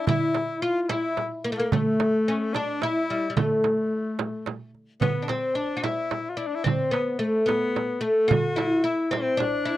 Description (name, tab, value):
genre	Arabic maqam ensemble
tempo	73 BPM (dotted quarters)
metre	6/8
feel	straight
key	A maqam hijaz, E maqam bayati from 5.0 s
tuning	A4 = 439 Hz
part	oud	melody	0.0-9.8 s	G3 to F#4-50c	-25 LUFS	left 1 dB	none
part	breathy alto saxophone	second line	0.0-9.8 s	A3 to F#4-46c	-29 LUFS	left 3 dB	none
part	darbuka	percussion	0.1-9.3 s	none	-29 LUFS	right 4 dB	none
part	frame drum	percussion	0.1-9.5 s	none	-30 LUFS	right 5 dB	none
room	light reverb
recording	dry, close 1970s-style studio recording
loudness	-22 LUFS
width	side -14 dB against mid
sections	0.0-5.0 A section; 5.0-9.8 B section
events	none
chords	none